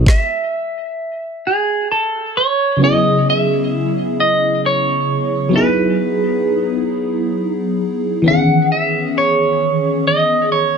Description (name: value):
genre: R&B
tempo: 44 BPM (dotted quarters)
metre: 6/8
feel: straight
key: unclear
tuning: A4 = 440 Hz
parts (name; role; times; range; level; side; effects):
- clean electric guitar; melody; 0.0-10.8 s; G#4 to F#5; -17 LUFS; right 1 dB; phaser, tape echo
- FM electric piano with soft pad layer; accompaniment; 0.0-10.8 s; C#3 to G#4; -16 LUFS; equal; chorus, phaser
room: moderate studio reverb, RT60 0.7 s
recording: dense, heavily limited modern master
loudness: -14 LUFS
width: side -6 dB against mid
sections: 0.0-2.8 A section; 2.8-10.8 B section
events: stop 0.1-2.8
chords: 0.1 N.C.; 2.8 C#m7; 5.5 Emaj9; 8.2 C#m7